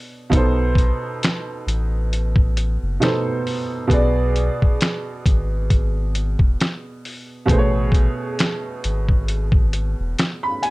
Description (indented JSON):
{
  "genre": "lo-fi hip hop",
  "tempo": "67 BPM",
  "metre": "4/4",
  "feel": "swing 57% on 16ths",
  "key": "B dorian",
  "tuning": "A4 = 440 Hz",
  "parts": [
    { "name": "warm upright piano", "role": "accompaniment", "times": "0.0-10.7 s", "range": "B2 to B5", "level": "-23 LUFS", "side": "right 2 dB", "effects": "none" },
    { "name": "soft dub sub bass", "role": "bass", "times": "0.3-10.2 s", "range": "E1 to B1", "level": "-21 LUFS", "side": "equal", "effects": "none" },
    { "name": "lo-fi sampler-style drum kit", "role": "drums", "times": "0.3-10.7 s", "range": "finger snaps, hi-hat, kick drum, snare drum", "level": "-18 LUFS", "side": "equal", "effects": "none" }
  ],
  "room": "light reverb",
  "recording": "none",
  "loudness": "-18 LUFS",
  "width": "side -20 dB against mid",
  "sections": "0.0-10.7 A section",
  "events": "none",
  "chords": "0.3 B7b9; 3.9 E7 (rootless); 7.5 Amaj9"
}